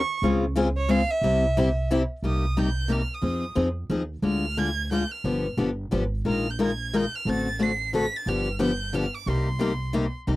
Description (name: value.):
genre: acoustic string swing (jazz manouche).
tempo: 179 BPM.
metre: 3/4.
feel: swing 61% on 8ths.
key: C minor.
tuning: A4 = 436 Hz.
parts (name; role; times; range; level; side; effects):
clear violin; melody; 0.0-10.2 s; Db5 to C7; -30 LUFS; right 3 dB; none.
upright bass; bass; 0.0-10.4 s; G1 to F2; -28 LUFS; right 1 dB; none.
picked steel-string acoustic guitar; accompaniment; 0.2-10.4 s; C3 to Bb4; -24 LUFS; left 2 dB; none.
room: little or no reverb.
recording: dry, close 1970s-style studio recording.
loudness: -23 LUFS.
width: side -17 dB against mid.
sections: 0.0-2.2 A section; 2.2-10.3 B section.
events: none.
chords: 0.2 Dbmaj7; 1.2 C; 2.2 Cm7; 3.2 Fm7; 4.2 Ddim; 5.2 G7; 6.3 Bb7sus4; 7.3 D7/A; 8.3 G7; 9.3 Cm7.